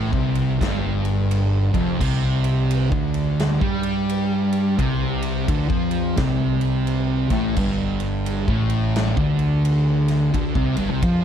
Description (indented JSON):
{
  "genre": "stoner and doom metal",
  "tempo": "86 BPM",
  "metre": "4/4",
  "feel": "swing 62% on 8ths",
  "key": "unclear",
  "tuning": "A4 = 440 Hz",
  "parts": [
    { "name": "thick fuzz guitar", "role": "riff", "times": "0.0-11.2 s", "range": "F2 to G3", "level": "-23 LUFS", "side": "left 7 dB", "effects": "distortion" },
    { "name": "thick fuzz guitar", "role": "riff", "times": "0.0-11.2 s", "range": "F2 to G3", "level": "-22 LUFS", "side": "right 6 dB", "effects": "distortion" },
    { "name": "fuzz fingered electric bass", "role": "bass", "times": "0.0-11.2 s", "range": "F1 to G2", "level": "-27 LUFS", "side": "left 1 dB", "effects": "overdrive" },
    { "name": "big rock drum kit", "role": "drums", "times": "0.1-11.2 s", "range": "crash cymbal, kick drum, ride cymbal, snare drum", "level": "-26 LUFS", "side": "equal", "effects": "none" }
  ],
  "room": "little or no reverb",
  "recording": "dark, warm production",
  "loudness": "-18 LUFS",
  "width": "side -9 dB against mid",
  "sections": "0.0-11.2 A section",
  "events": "none",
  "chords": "0.0 G5; 2.0 C5; 7.6 G5"
}